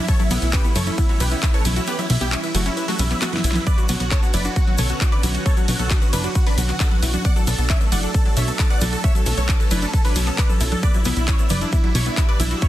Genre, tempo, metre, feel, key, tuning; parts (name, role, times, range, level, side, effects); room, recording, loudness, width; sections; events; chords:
uplifting trance; 134 BPM; 4/4; straight; B minor; A4 = 440 Hz
big supersaw lead; melody; 0.0-12.7 s; A3 to F#5; -27 LUFS; right 1 dB; phaser, sidechain pumping, tape echo
wide unison pluck; second line; 0.0-12.7 s; E4 to F#5; -34 LUFS; right 1 dB; sidechain pumping, tape echo
lush unison pad; sustained chords; 0.0-12.7 s; D3 to D4; -31 LUFS; equal; chorus, sidechain pumping
wide unison pluck; arpeggios; 0.1-12.7 s; B2 to B4; -30 LUFS; left 2 dB; sidechain pumping, tape echo
big-room dance drum kit; drums; 0.1-12.7 s; congas, handclaps, hi-hat, ride cymbal, snare drum; -26 LUFS; right 1 dB; overdrive
electronic kick drum; drums; 0.1-12.7 s; -18 LUFS; equal; overdrive
tube shaker; percussion; 0.1-12.7 s; -34 LUFS; left 7 dB
plucky analog bass; bass; 0.3-12.5 s; F#1 to B1; -22 LUFS; equal; sidechain pumping
digital ambience; dense, heavily limited modern master; -17 LUFS; side -14 dB against mid
0.0-12.7 A section
kick drops out 1.9-3.7; drum fill 3.2-3.7
0.1 A; 3.7 Bmadd9; 10.8 Em7